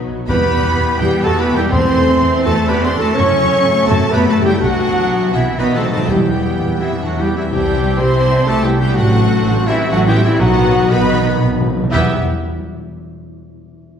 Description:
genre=cinematic, heroic adventure film score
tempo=124 BPM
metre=3/4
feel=straight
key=E minor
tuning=A4 = 437 Hz
part: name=warm symphonic viola section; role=accompaniment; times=0.0-12.2 s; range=F#3 to E4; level=-23 LUFS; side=left 1 dB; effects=none
part: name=concert harp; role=arpeggios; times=0.0-13.5 s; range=E2 to D6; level=-24 LUFS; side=left 4 dB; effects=none
part: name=warm studio double bass section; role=bass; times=0.1-12.2 s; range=A1 to F#2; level=-19 LUFS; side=right 2 dB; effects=none
part: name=warm symphonic violin section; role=melody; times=0.3-12.2 s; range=D#5 to C#6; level=-28 LUFS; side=left 2 dB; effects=none
part: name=bright large flute ensemble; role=second line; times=0.3-6.1 s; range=D#5 to C#6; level=-26 LUFS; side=equal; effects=none
part: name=warm clarinet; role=second line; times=0.3-12.1 s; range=C4 to A4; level=-25 LUFS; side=equal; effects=none
part: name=warm oboe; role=second line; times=0.3-12.1 s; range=E4 to C#5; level=-25 LUFS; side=equal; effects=none
part: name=warm symphonic violin section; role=second line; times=0.3-12.2 s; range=G4 to C#6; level=-26 LUFS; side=left 1 dB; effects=none
part: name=clear trombone section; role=sustained chords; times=0.3-12.1 s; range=D#3 to D4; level=-28 LUFS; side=right 2 dB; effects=none
part: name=mellow French horn section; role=sustained chords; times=0.3-12.1 s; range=D#4 to E5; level=-19 LUFS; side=left 1 dB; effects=none
part: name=rich symphonic cello section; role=bass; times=0.3-12.2 s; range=D#3 to C#4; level=-20 LUFS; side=right 2 dB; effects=none
part: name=timpani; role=percussion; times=0.3-2.4, 5.6-6.8, 10.4-12.2 s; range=E2 to B2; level=-23 LUFS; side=right 1 dB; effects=none
room=wet recital hall reverb, RT60 1.5 s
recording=heard from further back in the room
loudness=-12 LUFS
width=side -8 dB against mid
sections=0.0-6.1 A section; 6.1-11.9 B section; 11.9-13.5 C section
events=timpani fill 5.6-6.1, 10.4-11.9; slowing down 8.2-11.9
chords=0.3 Emadd9; 1.7 Am/E; 3.2 F#m; 4.6 Em/B; 5.6 B; 6.1 Em; 7.5 Cadd9; 9.0 Am; 10.4 B; 11.9 Em

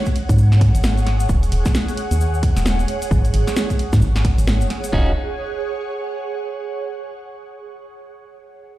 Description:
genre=UK garage, two-step garage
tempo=132 BPM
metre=4/4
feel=swing 60% on 16ths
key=Eb minor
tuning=A4 = 440 Hz
part: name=ethereal airy pad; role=texture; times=0.0-6.7 s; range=Ab4 to Gb5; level=-27 LUFS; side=right 3 dB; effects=ensemble chorus, built-in reverb, phaser, sidechain pumping
part: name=electronic kick drum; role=drums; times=0.1-5.0 s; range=none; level=-19 LUFS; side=equal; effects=none
part: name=house drum kit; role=drums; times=0.1-4.9 s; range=hi-hat, snare drum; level=-24 LUFS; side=equal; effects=none
part: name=cabasa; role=percussion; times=0.1-4.9 s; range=none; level=-37 LUFS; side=left 3 dB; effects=none
part: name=organ-like FM bass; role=bass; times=0.3-5.1 s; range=Eb1 to Ab2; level=-16 LUFS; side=equal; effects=none
part: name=electric guitar at the edge of break-up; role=stabs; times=4.9-5.1 s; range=Db4 to Ab4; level=-26 LUFS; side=right 1 dB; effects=digital delay
room=little or no reverb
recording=played on a big sound system in a bare room, stone room reverb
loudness=-16 LUFS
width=side -15 dB against mid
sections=0.0-4.9 A section; 4.9-6.7 B section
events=none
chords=0.0 Ab7sus4; 1.3 Ebm7; 2.9 Ab7sus4; 4.9 Ebm11

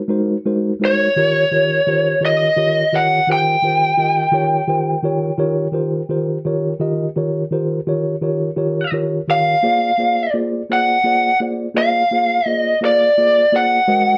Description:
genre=blues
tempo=57 BPM (dotted quarters)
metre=12/8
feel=straight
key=Eb mixolydian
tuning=A4 = 441 Hz
part: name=mellow tine electric piano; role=accompaniment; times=0.1-14.1 s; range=Eb3 to F5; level=-22 LUFS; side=equal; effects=none
part: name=lead guitar through a small cranked amp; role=melody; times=0.8-14.2 s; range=Db5 to G5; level=-17 LUFS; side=equal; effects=overdrive
room=moderate studio reverb, RT60 0.6 s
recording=none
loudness=-17 LUFS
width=mono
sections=0.0-14.2 A section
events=none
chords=0.0 Ab9; 1.2 Eb9; 9.6 Bb9

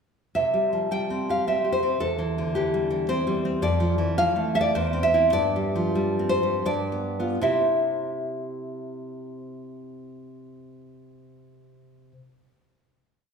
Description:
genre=romantic piece for solo classical guitar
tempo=76-113 BPM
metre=3/4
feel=rubato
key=C major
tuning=A4 = 438 Hz
part: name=nylon-string guitar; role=solo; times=0.3-12.1 s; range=E2 to G5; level=-23 LUFS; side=equal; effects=none
room=wet scoring stage reverb, RT60 1.7 s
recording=heard from further back in the room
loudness=-22 LUFS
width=side -6 dB against mid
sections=0.3-7.4 A section; 7.4-11.7 final chord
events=slowing down 2.8-7.4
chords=0.3 C; 2.0 C/E; 3.6 Dm/F; 4.8 C/E; 5.3 C5/G; 6.7 G7; 7.4 C

